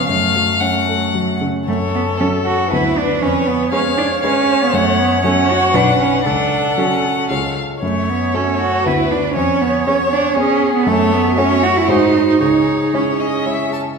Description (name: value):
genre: quick classical-period movement for piano quartet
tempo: 116 BPM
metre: 3/4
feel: rubato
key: F# minor, C# minor from 10.9 s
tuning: A4 = 441 Hz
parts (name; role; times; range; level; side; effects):
- clear violin; melody; 0.0-13.8 s; G#4 to A5; -20 LUFS; left 6 dB; none
- rich cello; second line; 0.0-13.7 s; E#3 to F#4; -17 LUFS; right 4 dB; none
- clear concert grand piano; accompaniment; 0.0-14.0 s; B1 to C#5; -20 LUFS; left 1 dB; none
- dark viola; accompaniment; 0.0-13.7 s; A3 to C#5; -22 LUFS; right 1 dB; none
room: wet scoring stage reverb, RT60 1.6 s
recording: recorded in a church or concert hall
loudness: -13 LUFS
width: side -5 dB against mid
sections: 0.0-1.7 A section; 1.7-14.0 A section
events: none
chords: 0.1 F#m; 2.7 Bm/D; 3.2 C#7/E#; 4.7 F#m; 5.7 Bm; 6.3 F#m/C#; 7.3 C#; 7.8 F#m; 8.9 Bm/D; 9.4 C#7/E#; 10.9 F#m; 11.9 G#7; 12.4 C#m